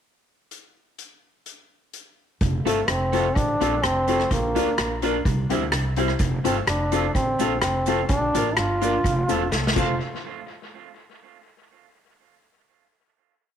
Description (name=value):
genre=ska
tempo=127 BPM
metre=4/4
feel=straight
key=F major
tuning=A4 = 439 Hz
part: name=street-band drum kit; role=drums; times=0.5-9.9 s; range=crash cymbal, hi-hat, kick drum, rim click, snare drum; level=-27 LUFS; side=equal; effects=tape echo
part: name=upright bass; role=bass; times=2.4-10.0 s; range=E1 to D2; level=-27 LUFS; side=right 1 dB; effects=none
part: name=clear trombone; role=melody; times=2.7-10.0 s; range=A3 to F4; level=-25 LUFS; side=equal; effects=none
part: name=electric guitar at the edge of break-up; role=accompaniment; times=2.7-9.9 s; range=G3 to F4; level=-30 LUFS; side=right 10 dB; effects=tape echo
part: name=dark upright piano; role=stabs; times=2.7-9.9 s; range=C4 to Bb4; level=-28 LUFS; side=left 10 dB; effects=none
part: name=cabasa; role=percussion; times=6.2-10.0 s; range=none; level=-40 LUFS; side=right 15 dB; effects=none
room=moderate spring reverb, RT60 2.3 s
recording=1960s-style stereo with parts hard left and right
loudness=-20 LUFS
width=side -8 dB against mid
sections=0.5-2.4 pickup bar; 2.4-10.0 A section; 10.0-11.9 final hit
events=drum fill 9.5-10.0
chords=0.5 N.C.; 2.4 F; 4.3 Bb; 5.3 C; 6.2 F; 8.1 Bb; 9.0 F; 10.0 N.C.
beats=| 0.51 0.99 1.46 1.94 | 2.41 2.89 3.36 3.83 | 4.31 4.78 5.26 5.73 | 6.20 6.68 7.15 7.62 | 8.10 8.57 9.04 9.52